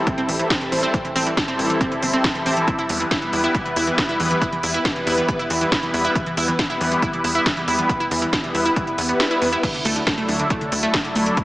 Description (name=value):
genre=uplifting trance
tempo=138 BPM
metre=4/4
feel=straight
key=E minor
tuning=A4 = 440 Hz
part: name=wide unison pluck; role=arpeggios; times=0.0-11.4 s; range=D3 to E4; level=-24 LUFS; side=right 1 dB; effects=sidechain pumping, analog delay
part: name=electronic kick drum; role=drums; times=0.1-11.4 s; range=none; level=-25 LUFS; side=equal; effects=none
part: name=techno drum kit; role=drums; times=0.1-11.4 s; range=crash cymbal, hi-hat, snare drum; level=-25 LUFS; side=equal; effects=none
part: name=tight sequencer bass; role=bass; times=0.3-11.3 s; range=G1 to E2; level=-28 LUFS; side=equal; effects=tube saturation, sidechain pumping
room=wet lush hall reverb, RT60 1.9 s, digital ambience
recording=dreamy mix soaked in reverb, small speaker sound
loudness=-18 LUFS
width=side -17 dB against mid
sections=0.0-11.4 A section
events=kick drops out 9.2-9.6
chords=0.0 Am7; 2.7 Em; 9.6 Dadd9